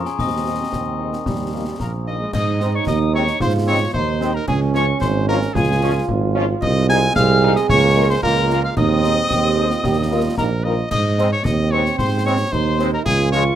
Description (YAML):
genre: military-style march for wind band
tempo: 112 BPM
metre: 2/4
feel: straight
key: Ab major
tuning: A4 = 438 Hz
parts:
  - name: warm cornet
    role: melody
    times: 0.0-13.4 s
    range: Ab4 to Ab5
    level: -24 LUFS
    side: equal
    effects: none
  - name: clear euphonium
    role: second line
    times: 0.0-13.6 s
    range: C4 to Ab4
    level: -24 LUFS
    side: right 5 dB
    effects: none
  - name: glockenspiel with soft plastic mallets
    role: second line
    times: 0.0-1.8 s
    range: Ab5 to Eb6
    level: -28 LUFS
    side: left 10 dB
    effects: none
  - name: bright trombone section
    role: sustained chords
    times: 0.0-13.4 s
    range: Eb3 to Db4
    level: -27 LUFS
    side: right 3 dB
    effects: none
  - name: mellow tuba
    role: bass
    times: 0.0-13.5 s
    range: Ab1 to Ab2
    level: -20 LUFS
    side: right 2 dB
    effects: none
  - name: concert snare drum, concert bass drum and clash cymbals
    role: drums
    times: 0.1-13.5 s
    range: none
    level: -26 LUFS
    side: left 1 dB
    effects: none
  - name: warm French horn section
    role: accompaniment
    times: 0.5-13.4 s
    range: G3 to C5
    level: -27 LUFS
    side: left 5 dB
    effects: none
  - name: mellow piccolo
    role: second line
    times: 1.8-13.6 s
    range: Ab5 to Ab6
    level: -23 LUFS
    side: left 4 dB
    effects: none
room: light reverb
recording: close, detailed microphones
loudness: -16 LUFS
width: side -10 dB against mid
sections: 0.0-2.3 A section; 2.3-13.6 B section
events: none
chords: 0.2 Ab/Eb; 1.3 Eb; 2.3 Ab; 4.5 Db; 6.6 Ab/C; 7.7 Bbm7/Db; 8.8 Ab/Eb; 9.8 Eb; 10.9 Ab